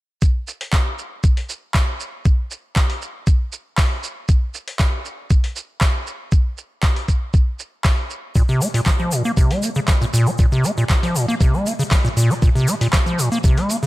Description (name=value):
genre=acid house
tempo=118 BPM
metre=4/4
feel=straight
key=Bb minor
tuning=A4 = 438 Hz
part: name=dusty soul sampler-style drum kit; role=drums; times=0.2-13.8 s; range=hi-hat, shaker, snare drum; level=-31 LUFS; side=right 2 dB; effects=overdrive, sidechain pumping on perc, high-pass filter on perc, sidechain pumping on hats, high-pass filter on hats, high-pass filter on snare, high-pass filter on room
part: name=electronic kick drum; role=drums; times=0.2-13.5 s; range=none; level=-16 LUFS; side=equal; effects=none
part: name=electronic handclaps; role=drums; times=0.7-13.0 s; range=none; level=-25 LUFS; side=equal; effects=none
part: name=acid bass, square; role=riff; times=8.4-13.9 s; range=Bb2 to Bb3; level=-18 LUFS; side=equal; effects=sidechain pumping, dub echo
part: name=egg shaker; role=percussion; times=8.4-13.9 s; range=none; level=-30 LUFS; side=left 3 dB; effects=none
room=little or no reverb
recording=none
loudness=-17 LUFS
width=side -18 dB against mid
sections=0.2-13.9 A section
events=none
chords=none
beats=| 0.22 0.73 1.24 1.75 | 2.25 2.76 3.27 3.78 | 4.29 4.80 5.30 5.81 | 6.32 6.83 7.34 7.85 | 8.36 8.87 9.37 9.88 | 10.39 10.90 11.41 11.91 | 12.42 12.93 13.44